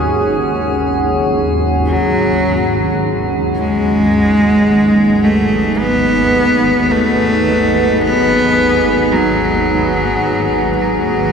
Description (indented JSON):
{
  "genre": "dark ambient drone",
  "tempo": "free time",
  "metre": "none",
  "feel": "none",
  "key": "unclear",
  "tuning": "A4 = 441 Hz",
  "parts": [
    { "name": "deep dark ambient pad", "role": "sustained chords", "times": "0.0-11.3 s", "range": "C#4 to F#5", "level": "-18 LUFS", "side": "right 2 dB", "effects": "chorus, built-in reverb" },
    { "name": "swarming drone", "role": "drone", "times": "0.0-11.3 s", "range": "G#1 to D#2", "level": "-21 LUFS", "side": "equal", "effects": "built-in reverb" },
    { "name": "metallic inharmonic drone", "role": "texture", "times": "0.0-11.3 s", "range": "F#3 to G#4", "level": "-21 LUFS", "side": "left 2 dB", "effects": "chorus, built-in reverb" },
    { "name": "clear cello", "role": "melody", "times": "1.9-11.3 s", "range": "F#3 to B3", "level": "-13 LUFS", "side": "equal", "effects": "ping-pong delay" },
    { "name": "bronze singing bowl", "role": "arpeggios", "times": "2.6-11.3 s", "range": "G#2 to F#3", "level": "-33 LUFS", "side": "equal", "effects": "none" }
  ],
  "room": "wet cathedral reverb, RT60 6.2 s",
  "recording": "none",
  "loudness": "-11 LUFS",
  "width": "side -6 dB against mid",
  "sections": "0.0-3.5 A section; 3.5-11.3 B section",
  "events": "none",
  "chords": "0.0 C#sus4; 3.5 B"
}